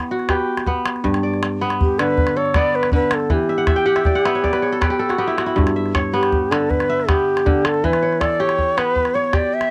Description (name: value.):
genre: west african traditional, West African string and xylophone music.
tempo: 106 BPM (dotted quarters).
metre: 12/8.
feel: straight.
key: G lydian.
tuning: A4 = 440 Hz.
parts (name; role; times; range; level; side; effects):
kora; arpeggios; 0.0-9.7 s; G2 to G5; -23 LUFS; equal; none.
calabash; percussion; 0.0-9.7 s; none; -23 LUFS; equal; none.
mellow shakuhachi; melody; 1.8-9.7 s; G4 to E5; -21 LUFS; equal; none.
room: light reverb.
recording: home recording on cassette.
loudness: -18 LUFS.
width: mono.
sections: 0.0-5.6 A section; 5.6-9.7 B section.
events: kora fill 3.5-5.6; shakuhachi solo 5.6-9.7.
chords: 0.0 Em; 1.0 G; 3.3 Em; 5.6 G; 7.8 Em.